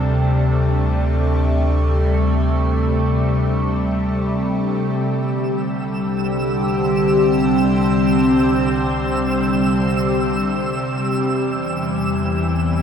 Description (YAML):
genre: ambient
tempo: free time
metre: none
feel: none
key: C major from 5.0 s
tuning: A4 = 440 Hz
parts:
  - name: evolving wavetable pad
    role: sustained chords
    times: 0.0-12.8 s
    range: C3 to C5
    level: -18 LUFS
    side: left 1 dB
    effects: chorus, built-in reverb, phaser
  - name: round analog bass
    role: bass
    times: 0.0-12.8 s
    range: C2 to E2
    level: -23 LUFS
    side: equal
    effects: none
  - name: bowed-like drone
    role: drone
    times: 0.0-12.8 s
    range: C3 to G3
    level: -25 LUFS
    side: equal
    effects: built-in reverb
  - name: twinkling granular texture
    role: texture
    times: 5.3-12.8 s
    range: E6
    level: -28 LUFS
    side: right 3 dB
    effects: built-in reverb
room: moderate shimmer reverb, RT60 8.1 s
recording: none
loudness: -16 LUFS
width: side -8 dB against mid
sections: 0.0-5.0 A section; 5.0-12.8 B section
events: fade-in on analog synth bass 5.0-12.8; fade-out on synth texture 5.0-12.8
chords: 0.0 D7sus4; 5.0 Csus2; 11.1 Em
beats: free time